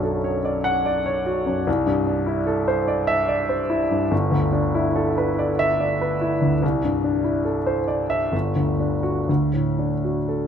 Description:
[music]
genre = classical, impressionist solo piano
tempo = 60-76 BPM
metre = 3/4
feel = rubato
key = unclear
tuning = A4 = 440 Hz
[part]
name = warm grand piano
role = solo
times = 0.0-10.5 s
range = G1 to F#5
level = -19 LUFS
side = equal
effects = none
[sound]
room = moderate scoring stage reverb, RT60 1.8 s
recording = close, detailed microphones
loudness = -19 LUFS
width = side -8 dB against mid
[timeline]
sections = 0.0-10.5 A section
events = none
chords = 0.0 Dmaj7/B; 1.7 C69; 4.1 G69; 6.6 C69; 8.3 G5; 9.3 D

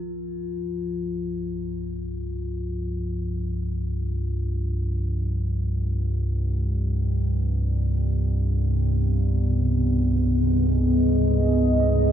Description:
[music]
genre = dark ambient drone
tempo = free time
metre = none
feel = none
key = unclear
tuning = A4 = 442 Hz
[part]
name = deep rumbling drone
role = drone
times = 0.7-12.1 s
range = C2 to G2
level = -23 LUFS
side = equal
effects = built-in reverb
[part]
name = bronze singing bowl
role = texture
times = 0.0-12.1 s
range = F3 to F4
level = -34 LUFS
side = left 5 dB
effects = none
[part]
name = deep dark ambient pad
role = sustained chords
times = 9.0-12.1 s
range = Cb4 to Eb5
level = -23 LUFS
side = equal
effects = chorus, built-in reverb
[sound]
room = moderate cathedral reverb, RT60 5.2 s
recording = dark, warm production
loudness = -22 LUFS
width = side -10 dB against mid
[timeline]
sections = 0.0-12.1 A section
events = none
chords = 0.0 F5; 7.8 Abm

